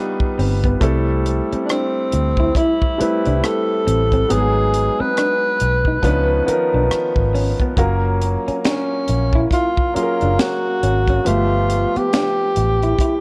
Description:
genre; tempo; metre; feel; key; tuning
R&B, neo-soul; 69 BPM; 4/4; swing 60% on 16ths; unclear; A4 = 440 Hz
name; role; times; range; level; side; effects
warm concert grand piano; accompaniment; 0.0-13.2 s; D#3 to E#5; -24 LUFS; equal; none
tight funk drum kit; drums; 0.2-13.2 s; finger snaps, hi-hat, kick drum, rim click, snare drum; -24 LUFS; equal; none
electric guitar through a small old amp; second line; 0.4-13.2 s; A3 to F#4; -28 LUFS; equal; spring reverb
vintage muted fingered electric bass; bass; 0.4-12.9 s; F#1 to D2; -22 LUFS; equal; transformer saturation
breathy tenor saxophone; melody; 1.7-13.2 s; C4 to B4; -22 LUFS; equal; none
room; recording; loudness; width
light reverb, small room ambience; worn, warbling old tape, cassette tape, warbly pitch drift; -18 LUFS; mono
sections
0.0-13.2 A section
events
none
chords
0.0 G7alt; 0.8 C6; 4.3 G#m7; 6.0 C#13; 7.8 F#maj7; 11.2 G13

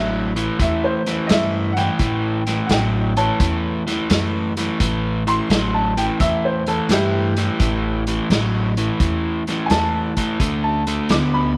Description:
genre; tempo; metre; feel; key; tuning
electric blues shuffle; 86 BPM; 4/4; swing 67% on 8ths; unclear; A4 = 440 Hz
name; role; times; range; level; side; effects
warm upright piano; second line; 0.0-11.6 s; E4 to D6; -26 LUFS; equal; none
crunchy overdriven guitar; riff; 0.0-11.5 s; A2 to B3; -24 LUFS; equal; none
upright bass; bass; 0.0-11.6 s; A1 to G2; -26 LUFS; equal; none
vintage drum kit; drums; 0.4-11.3 s; hi-hat, kick drum, snare drum; -24 LUFS; equal; none
room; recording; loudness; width
light reverb, small room ambience; none; -20 LUFS; mono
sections
0.0-11.6 A section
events
upright piano solo 0.0-11.6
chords
0.0 A7(no3); 10.4 D5

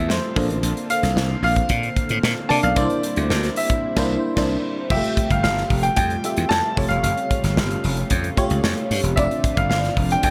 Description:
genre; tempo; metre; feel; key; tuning
polished 1980s jazz-funk pop; 112 BPM; 4/4; straight; F major; A4 = 440 Hz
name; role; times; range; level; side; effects
clear baby grand piano; melody; 0.0-10.3 s; C5 to A5; -26 LUFS; equal; none
FM electric piano; accompaniment; 0.0-10.3 s; G3 to G5; -28 LUFS; equal; ensemble chorus
lush unison pad; sustained chords; 0.0-10.3 s; C3 to A4; -34 LUFS; equal; chorus
slap bass; bass; 0.0-10.3 s; E1 to C3; -24 LUFS; equal; none
modern studio drum kit; drums; 0.1-10.3 s; crash cymbal, hi-hat, kick drum, snare drum; -26 LUFS; equal; none
room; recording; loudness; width
light reverb, small room ambience; none; -21 LUFS; mono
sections
0.0-4.9 A section; 4.9-10.3 B section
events
band accent 3.8-4.9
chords
0.4 Bbmaj9; 2.8 C9; 4.9 Fmaj9; 6.8 A7alt; 9.2 Dm9/F

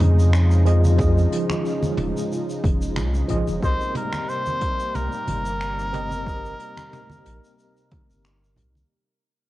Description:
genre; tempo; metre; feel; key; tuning
sunset chillout; 91 BPM; 4/4; swing 54% on 16ths; unclear; A4 = 438 Hz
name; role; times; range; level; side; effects
bright tine electric piano; accompaniment; 0.0-8.9 s; F3 to Eb5; -29 LUFS; equal; overdrive, fast stereo tremolo, auto-pan, cassette tape, analog delay
lush unison pad; sustained chords; 0.0-8.9 s; C3 to Eb4; -29 LUFS; equal; chorus, cassette tape
warm sub bass; bass; 0.0-8.8 s; Eb1 to F2; -20 LUFS; equal; none
jazz brush drum kit; drums; 0.0-8.9 s; finger snaps, hi-hat, shaker, toms; -33 LUFS; equal; cassette tape
congas; percussion; 0.0-8.9 s; none; -29 LUFS; right 1 dB; none
electronic kick drum; drums; 1.0-8.1 s; none; -24 LUFS; equal; cassette tape
trumpet with cup mute; melody; 3.6-8.2 s; Bb4 to C5; -28 LUFS; left 1 dB; cassette tape
room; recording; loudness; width
light reverb, small room ambience; home recording on cassette; -19 LUFS; side -16 dB against mid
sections
0.0-8.9 A section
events
fade-out 1.9-8.9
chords
0.0 Fm7; 3.6 Cm7

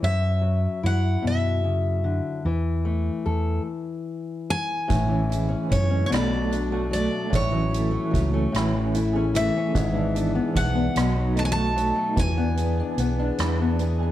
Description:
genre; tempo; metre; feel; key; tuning
acoustic folk-pop ballad; 50 BPM (dotted quarters); 6/8; straight; A major; A4 = 440 Hz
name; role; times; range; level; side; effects
picked steel-string acoustic guitar; melody; 0.0-14.1 s; C#5 to A5; -28 LUFS; equal; none
fingerpicked acoustic archtop guitar; accompaniment; 0.0-14.1 s; F#2 to A4; -27 LUFS; left 4 dB; none
fingered electric bass; bass; 0.0-14.1 s; G#1 to F#2; -25 LUFS; right 1 dB; none
clean electric guitar; arpeggios; 4.9-14.1 s; E3 to G#4; -28 LUFS; right 4 dB; tremolo
soft-mallet drum kit; drums; 4.9-14.0 s; hi-hat, kick drum, rim click; -30 LUFS; equal; none
room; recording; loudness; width
moderate large studio reverb, RT60 1.1 s; dark, warm production; -21 LUFS; side -13 dB against mid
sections
0.0-4.9 A section; 4.9-14.1 B section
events
stop 3.7-4.9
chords
0.0 F#5; 2.5 Esus4; 3.7 N.C.; 4.9 Amaj7; 6.1 Bm7; 7.3 F#m7/A; 8.5 Amaj7; 9.7 E7/G#; 11.0 B7; 12.2 E7

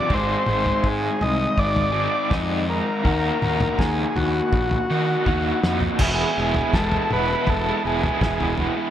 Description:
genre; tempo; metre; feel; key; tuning
psychedelic rock; 81 BPM; 4/4; straight; unclear; A4 = 439 Hz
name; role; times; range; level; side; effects
combo organ; melody; 0.0-8.6 s; D#4 to D#5; -24 LUFS; equal; diffuse ambient delay
raw garage guitar; riff; 0.0-8.9 s; E2 to G#4; -24 LUFS; equal; overdrive, tremolo
fuzz fingered electric bass; bass; 0.1-8.7 s; E1 to D#3; -26 LUFS; equal; overdrive
cloth-damped thuddy drum kit; drums; 0.1-8.8 s; crash cymbal, kick drum, snare drum, toms; -24 LUFS; equal; none
room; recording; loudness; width
moderate plate reverb, RT60 1.9 s, small room reverb; dreamy mix soaked in reverb; -19 LUFS; side -10 dB against mid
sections
0.0-6.0 A section; 6.0-8.9 B section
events
drum fill 5.3-6.0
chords
0.1 G#; 3.1 D#m; 6.0 E

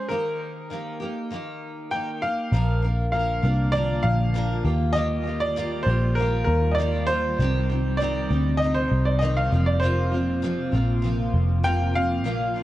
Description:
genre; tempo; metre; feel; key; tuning
acoustic pop; 99 BPM; 4/4; swing 55% on 16ths; Bb major; A4 = 438 Hz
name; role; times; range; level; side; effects
bright upright piano; melody; 0.0-12.6 s; Bb4 to G5; -26 LUFS; equal; digital delay
picked steel-string acoustic guitar; accompaniment; 0.0-12.6 s; F2 to Bb4; -28 LUFS; equal; double-tracked left and right
granular cloud pad; sustained chords; 3.7-12.6 s; C3 to F4; -35 LUFS; equal; built-in reverb
vintage muted picked electric bass; bass; 2.5-12.6 s; F1 to Eb2; -23 LUFS; equal; none
room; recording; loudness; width
light reverb, small room ambience; worn, warbling old tape, cassette tape, warbly pitch drift; -21 LUFS; side -14 dB against mid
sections
0.0-2.5 A section; 2.5-12.6 B section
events
none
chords
0.1 Eb; 2.5 Bb; 4.7 Ebadd9; 7.4 Cm; 9.5 Fsus4

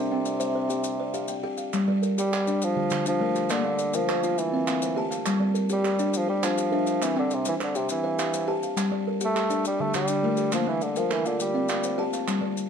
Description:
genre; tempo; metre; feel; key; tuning
southern african traditional, mbira-style interlocking cycle; 136 BPM (dotted quarters); 12/8; straight; G dorian; A4 = 440 Hz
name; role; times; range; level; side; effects
warm bassoon; melody; 0.0-12.1 s; C3 to A3; -27 LUFS; right 2 dB; plate reverb
buzzing kalimba; arpeggios; 0.0-12.6 s; D3 to A5; -27 LUFS; left 4 dB; none
buzzing kalimba; arpeggios; 0.0-12.7 s; D3 to G5; -32 LUFS; right 4 dB; none
maracas; percussion; 0.3-12.7 s; none; -37 LUFS; left 5 dB; none
group handclap; percussion; 1.7-12.4 s; none; -34 LUFS; right 6 dB; none
room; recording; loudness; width
moderate studio reverb, RT60 0.6 s; dark, warm production; -23 LUFS; side -7 dB against mid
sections
0.0-1.7 A section; 1.7-12.7 B section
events
none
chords
0.0 C; 1.7 Gm; 2.6 Dm; 3.5 Bb; 4.4 C; 5.3 Gm; 7.0 C; 8.8 Gm; 9.7 Dm; 10.5 Bb; 11.4 C

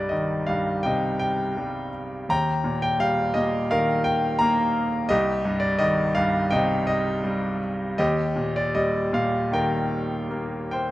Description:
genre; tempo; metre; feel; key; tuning
classical, lyrical solo piano; 74-87 BPM; 4/4; rubato; C minor; A4 = 439 Hz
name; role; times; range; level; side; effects
bright grand piano; solo; 0.0-10.9 s; C2 to Bb5; -22 LUFS; equal; none
room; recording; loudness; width
light reverb; close, detailed microphones; -21 LUFS; side -16 dB against mid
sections
0.0-10.9 A section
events
none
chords
0.0 Cm; 2.3 Eb; 5.1 Cm; 8.0 Eb

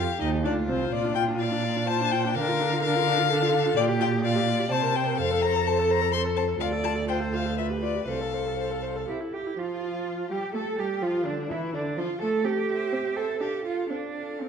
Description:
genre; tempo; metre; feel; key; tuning
quick classical-period movement for string quartet; 126 BPM; 3/4; rubato; Bb major, F major from 3.8 s; A4 = 440 Hz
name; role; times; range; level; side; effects
rich violin; melody; 0.0-14.5 s; D4 to C6; -30 LUFS; left 10 dB; none
rich violin; second line; 0.0-14.5 s; D4 to D5; -30 LUFS; left 3 dB; none
warm viola; accompaniment; 0.0-14.5 s; D3 to C5; -31 LUFS; right 2 dB; none
rich cello; bass; 0.0-14.5 s; C2 to A4; -29 LUFS; right 5 dB; none
room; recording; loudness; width
wet recital hall reverb, RT60 1.8 s; dark, warm production; -24 LUFS; side -7 dB against mid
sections
0.0-9.6 A section; 9.6-14.5 B section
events
none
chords
0.0 F7(no3); 0.9 Bb; 2.4 Bb/D; 3.8 Gm7/Bb; 4.7 C5; 5.2 F; 6.6 Dm; 7.6 G7/D; 8.1 F/C; 9.1 Emadd11; 9.6 F; 11.0 Dmadd9; 12.4 C; 13.4 Dm; 13.9 F/C

